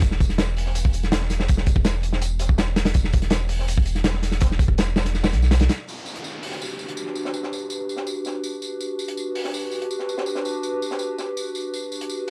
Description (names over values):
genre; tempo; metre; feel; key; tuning
drum and bass, jungle; 164 BPM; 4/4; straight; unclear; A4 = 440 Hz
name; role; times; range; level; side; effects
soft dub sub bass; bass; 0.0-5.7 s; E1 to B1; -25 LUFS; equal; none
crunchy breakbeat drum kit; drums; 0.0-5.8 s; hi-hat, kick drum, snare drum; -23 LUFS; equal; none
crunchy breakbeat drum kit; drums; 0.0-12.3 s; hi-hat, snare drum, tambourine; -36 LUFS; equal; high-pass filter on hats, high-pass filter on snare, high-pass filter on perc, high-pass filter on room
warbly tape-like pad; sustained chords; 6.4-12.3 s; D4 to B4; -30 LUFS; equal; chorus, built-in reverb, vintage 12-bit sampler grit
downlifter; sound effects; 5.9-8.8 s; none; -40 LUFS; equal; none
room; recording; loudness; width
small room ambience; dry, gritty hardware recording, vinyl crackle; -24 LUFS; mono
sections
0.0-5.9 A section; 5.9-12.3 B section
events
drop 0.0-5.9; kick drops out 5.1-5.9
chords
0.0 E5; 5.9 Gmaj7/D